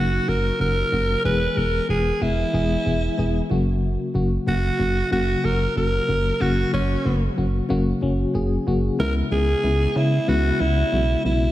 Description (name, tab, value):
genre	1980s-style pop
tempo	93 BPM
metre	4/4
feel	straight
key	unclear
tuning	A4 = 437 Hz
part	breathy alto saxophone	melody	0.0-11.5 s	C#4 to B4	-24 LUFS	right 1 dB	none
part	FM electric piano with tremolo	accompaniment	0.0-11.5 s	C#3 to G#4	-24 LUFS	left 2 dB	none
part	solid FM bass	bass	0.0-11.5 s	E1 to C#3	-23 LUFS	equal	none
room	light reverb, small room reverb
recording	none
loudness	-19 LUFS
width	side -14 dB against mid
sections	0.0-9.0 A section; 9.0-11.5 B section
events	none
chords	0.0 F#; 1.2 E; 3.5 F#; 9.0 C#m7